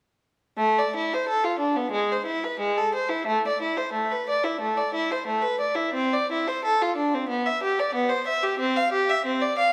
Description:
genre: classical, baroque-style suite movement for unaccompanied violin.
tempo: 90 BPM.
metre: 4/4.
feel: rubato.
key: A minor.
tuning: A4 = 439 Hz.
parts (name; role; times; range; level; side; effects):
rich violin; solo; 0.6-9.7 s; G#3 to F5; -25 LUFS; equal; none.
room: wet recital hall reverb, RT60 1.6 s.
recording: recorded in a church or concert hall.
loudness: -25 LUFS.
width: mono.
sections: 0.6-9.7 A section.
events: none.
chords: none.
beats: | 0.58 1.27 1.94 2.60 | 3.27 3.94 4.60 5.26 | 5.96 6.63 7.29 7.93 | 8.58 9.23.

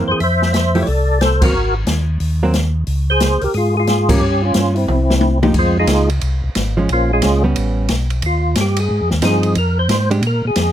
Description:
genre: soul jazz organ trio.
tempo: 180 BPM.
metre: 4/4.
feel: swing 64% on 8ths.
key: F minor.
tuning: A4 = 440 Hz.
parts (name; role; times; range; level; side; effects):
percussive tonewheel organ; melody; 0.0-10.7 s; F3 to E5; -17 LUFS; equal; chorus vibrato, slow rotary speaker.
hollow-body jazz guitar; accompaniment; 0.0-10.2 s; Fb3 to G4; -19 LUFS; right 2 dB; none.
mellow tonewheel organ; bass; 0.0-10.7 s; Ab1 to Bb2; -17 LUFS; equal; overdrive, chorus vibrato, slow rotary speaker.
open jazz drum kit; drums; 0.2-10.7 s; crash cymbal, hi-hat, kick drum, ride cymbal, snare drum, toms; -20 LUFS; left 1 dB; none.
room: light reverb.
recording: close, detailed microphones.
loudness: -13 LUFS.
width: side -11 dB against mid.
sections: 0.0-5.5 A section; 5.5-10.7 B section.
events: band accent 1.4, 4.0; drum fill 4.9-5.5; tonewheel organ solo 5.5-10.7.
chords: 0.2 Fmaj7; 1.5 Ab7sus2; 2.9 Dbmaj7; 4.2 Dbmaj7#11/G; 4.9 C; 5.5 Fm7; 6.9 Bbm7; 7.6 A9; 8.2 Ab6; 9.6 Fm.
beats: | 0.20 0.54 0.87 1.21 | 1.54 1.88 2.21 2.54 | 2.88 3.21 3.54 3.88 | 4.21 4.55 4.88 5.22 | 5.55 5.88 6.22 6.55 | 6.89 7.22 7.56 7.89 | 8.22 8.56 8.89 9.23 | 9.56 9.90 10.23 10.56.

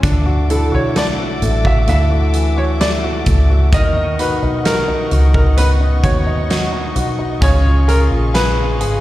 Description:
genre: pop ballad.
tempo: 65 BPM.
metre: 4/4.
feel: straight.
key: unclear.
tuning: A4 = 439 Hz.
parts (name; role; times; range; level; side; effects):
clear upright piano; accompaniment; 0.0-9.0 s; C#3 to G#4; -22 LUFS; left 2 dB; slapback echo.
warm studio string section; sustained chords; 0.0-9.0 s; B3 to D6; -28 LUFS; left 1 dB; none.
nylon-string guitar; arpeggios; 0.0-9.0 s; C#3 to B4; -26 LUFS; right 2 dB; slapback echo.
vintage muted fingered electric bass; bass; 0.0-9.0 s; G#1 to D#2; -15 LUFS; equal; none.
huge arena drum kit; drums; 0.0-9.0 s; hi-hat, kick drum, snare drum; -19 LUFS; equal; none.
clear concert grand piano; melody; 0.5-9.0 s; A4 to E5; -21 LUFS; equal; slapback echo.
room: little or no reverb.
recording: live gig heard through the venue's PA, recital hall reverb.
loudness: -12 LUFS.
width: side -15 dB against mid.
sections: 0.0-9.0 A section.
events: none.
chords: 0.0 Dadd9; 3.7 Badd9; 7.4 C#add9.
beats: | 0.03 0.96 1.88 2.80 | 3.73 4.65 5.57 6.50 | 7.42 8.34.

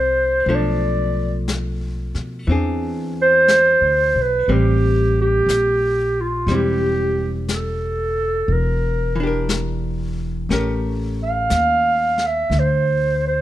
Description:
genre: jazz ballad.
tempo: 60 BPM.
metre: 4/4.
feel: swing 68% on 8ths.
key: unclear.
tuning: A4 = 443 Hz.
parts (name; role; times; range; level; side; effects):
mellow clarinet; melody; 0.0-13.4 s; F4 to F5; -17 LUFS; right 1 dB; none.
archtop guitar, miked and amplified; accompaniment; 0.0-12.5 s; E3 to Bb4; -25 LUFS; left 1 dB; none.
upright bass; bass; 0.0-13.4 s; E1 to B2; -22 LUFS; equal; none.
vintage brush drum kit; drums; 0.5-13.4 s; brushed snare drum, hi-hat, snare drum; -27 LUFS; left 4 dB; none.
room: light reverb.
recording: minimal, uncompressed stereo recording.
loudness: -16 LUFS.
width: side -14 dB against mid.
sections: 0.0-13.4 A section.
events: none.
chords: 0.5 Bm7b5; 2.5 E7b13; 4.5 Am7; 8.5 Em7b5; 10.5 A7b9; 12.5 D7(no3).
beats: | 0.47 1.47 2.47 3.48 | 4.48 5.49 6.49 7.49 | 8.50 9.50 10.50 11.51 | 12.51.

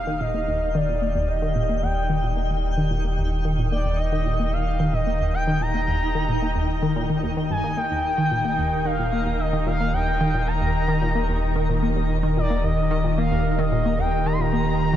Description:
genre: ambient.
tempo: 111 BPM.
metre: 4/4.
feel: straight.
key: Eb major.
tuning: A4 = 441 Hz.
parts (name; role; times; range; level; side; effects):
expressive portamento lead; melody; 0.0-15.0 s; D5 to C6; -26 LUFS; equal; chorus, shimmer reverb, ping-pong delay.
evolving wavetable pad; sustained chords; 0.0-15.0 s; Eb3 to Bb5; -29 LUFS; equal; chorus, built-in reverb.
warm sub bass; bass; 0.0-15.0 s; Eb1; -26 LUFS; equal; none.
twinkling granular texture; texture; 0.0-15.0 s; Eb4 to G5; -31 LUFS; equal; built-in reverb, shimmer reverb.
analog pluck; riff; 0.1-15.0 s; Eb2 to Bb3; -26 LUFS; equal; chorus, ping-pong delay.
room: moderate huge ambient reverb, RT60 8.1 s.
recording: none.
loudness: -20 LUFS.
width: side -11 dB against mid.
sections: 0.0-15.0 A section.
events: fade-in on ambient pad 0.0-15.0; filter sweep on synth arpeggio sound 0.0-15.0.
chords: 0.0 Eb.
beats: 0.21 0.75 | 1.29 1.83 2.37 2.91 | 3.45 3.99 4.53 5.07 | 5.61 6.15 6.69 7.24 | 7.78 8.32 8.86 9.40 | 9.94 10.48 11.02 11.56 | 12.10 12.64 13.18 13.72 | 14.26 14.80.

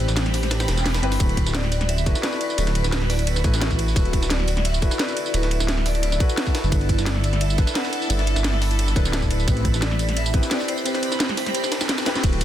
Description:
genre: liquid drum and bass.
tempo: 174 BPM.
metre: 4/4.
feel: straight.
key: D mixolydian.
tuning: A4 = 440 Hz.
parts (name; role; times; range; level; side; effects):
vibraphone with medium mallets; melody; 0.0-11.9 s; B4 to F#5; -31 LUFS; left 1 dB; dub echo.
dark concert grand piano; accompaniment; 0.0-12.4 s; C4 to C5; -30 LUFS; left 2 dB; tape echo.
shimmering ambient pad; sustained chords; 0.0-12.4 s; C4 to B5; -30 LUFS; right 2 dB; chorus, built-in reverb, phaser, sidechain pumping.
dark detuned saw bass; bass; 0.0-12.4 s; D1 to A1; -22 LUFS; equal; tube saturation.
drum and bass drum kit; drums; 0.0-12.4 s; hi-hat, ride cymbal, snare drum, tambourine; -27 LUFS; right 1 dB; none.
jungle sampler-style drum kit; drums; 0.1-12.4 s; hi-hat, ride cymbal, snare drum; -31 LUFS; right 2 dB; high-pass filter on cymbals, high-pass filter on snare, high-pass filter on hats.
electronic kick drum; drums; 1.2-12.3 s; none; -21 LUFS; equal; none.
room: digital ambience.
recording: dense, heavily limited modern master.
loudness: -19 LUFS.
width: side -11 dB against mid.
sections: 0.0-12.2 A section.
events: break 0.0-1.2; drop 0.0-12.2; drum fill 12.1.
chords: 0.0 Am9; 1.2 D6; 6.7 G69; 9.5 Am9.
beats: 0.17 0.51 0.86 | 1.20 1.55 1.89 2.23 | 2.58 2.92 3.27 3.62 | 3.96 4.30 4.65 4.99 | 5.34 5.68 6.03 6.37 | 6.72 7.06 7.41 7.75 | 8.10 8.44 8.79 9.13 | 9.48 9.82 10.17 10.51 | 10.86 11.20 11.55 11.89 | 12.23.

